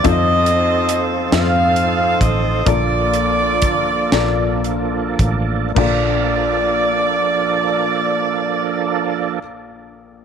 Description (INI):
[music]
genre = slow gospel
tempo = 34-48 BPM (dotted quarters)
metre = 6/8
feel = straight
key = Bb major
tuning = A4 = 440 Hz
[part]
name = clear saxophone section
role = melody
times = 0.0-9.4 s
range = F4 to F5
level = -18 LUFS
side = right 1 dB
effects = none
[part]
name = warm upright piano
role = accompaniment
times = 0.0-10.2 s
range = Bb1 to Eb5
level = -23 LUFS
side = left 12 dB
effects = none
[part]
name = overdriven tonewheel organ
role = sustained chords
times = 0.0-9.4 s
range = F3 to A4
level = -23 LUFS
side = right 11 dB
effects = fast rotary speaker, chorus vibrato
[part]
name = crisp fusion drum kit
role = drums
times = 0.0-6.0 s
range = crash cymbal, hi-hat, kick drum, snare drum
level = -22 LUFS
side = right 1 dB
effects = none
[part]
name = fingered electric bass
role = bass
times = 0.1-9.4 s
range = A1 to F2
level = -21 LUFS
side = right 1 dB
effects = none
[sound]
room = moderate spring reverb, RT60 2.6 s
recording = 1960s-style stereo with parts hard left and right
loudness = -15 LUFS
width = side -7 dB against mid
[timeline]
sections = 0.0-5.8 A section; 5.8-9.3 B section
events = slowing down 0.0-5.8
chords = 0.0 F7; 2.7 Bbmaj7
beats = | 0.05 1.32 | 2.66 4.12 | 5.76 7.53